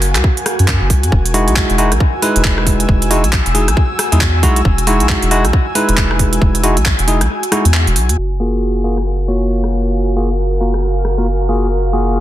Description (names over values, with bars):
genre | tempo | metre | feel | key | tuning
UK garage, two-step garage | 136 BPM | 4/4 | swing 61% on 16ths | F# major | A4 = 440 Hz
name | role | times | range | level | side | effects
soft dub sub bass | bass | 0.0-12.2 s | E1 to F#2 | -15 LUFS | equal | none
garage drum kit | drums | 0.0-11.2 s | crash cymbal, handclaps, hi-hat, rim click | -18 LUFS | right 1 dB | soft clipping on snare
airy breathy pad | texture | 0.0-12.2 s | F#4 to E6 | -22 LUFS | equal | chorus, sidechain pumping
electronic kick drum | drums | 0.2-7.0 s | none | -16 LUFS | equal | none
barky tine electric piano | stabs | 1.3-12.2 s | G#3 to C#5 | -17 LUFS | equal | low-pass filter, ping-pong delay
room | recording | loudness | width
light reverb | dense, heavily limited modern master, low-pass filter | -12 LUFS | side -13 dB against mid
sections
0.0-8.2 A section; 8.2-12.2 B section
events
kick drops out 7.3-8.2; filter sweep 8.2-12.2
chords
0.0 F#maj9; 1.1 Emaj9; 8.2 F#maj9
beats
0.24 0.68 | 1.12 1.56 2.00 2.44 | 2.89 3.33 3.77 4.21 | 4.65 5.09 5.53 5.97 | 6.42 6.86 7.30 7.74 | 8.18 8.62 9.06 9.50 | 9.95 10.39 10.83 11.27 | 11.71 12.15